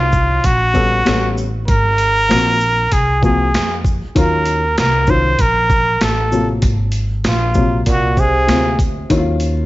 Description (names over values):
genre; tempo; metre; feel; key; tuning
hip hop, jazz-hop; 97 BPM; 4/4; swing 61% on 16ths; unclear; A4 = 436 Hz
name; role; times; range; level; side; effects
trumpet with straight mute; melody; 0.0-8.8 s; F4 to C5; -16 LUFS; right 1 dB; none
dark upright piano; accompaniment; 0.0-9.7 s; C3 to Db5; -19 LUFS; left 3 dB; none
upright bass; bass; 0.0-9.7 s; Ab1 to F2; -19 LUFS; equal; none
boom bap sampler-style drum kit; drums; 0.1-9.6 s; hi-hat, kick drum, shaker, snare drum; -19 LUFS; equal; none
breathy tenor saxophone; second line; 7.9-8.8 s; Bb2 to C3; -22 LUFS; right 3 dB; tape echo
room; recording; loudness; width
light reverb; vinyl crackle, nothing above 7.7 kHz; -13 LUFS; side -17 dB against mid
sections
0.0-9.7 A section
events
none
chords
0.0 Ebm9; 1.1 A9; 1.7 Ab13; 4.2 Ebm9; 6.0 Am6; 6.6 Ab13; 9.1 Ebm9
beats
0.44 1.06 | 1.68 2.30 2.92 3.54 | 4.15 4.77 5.39 6.01 | 6.63 7.25 7.87 8.48 | 9.10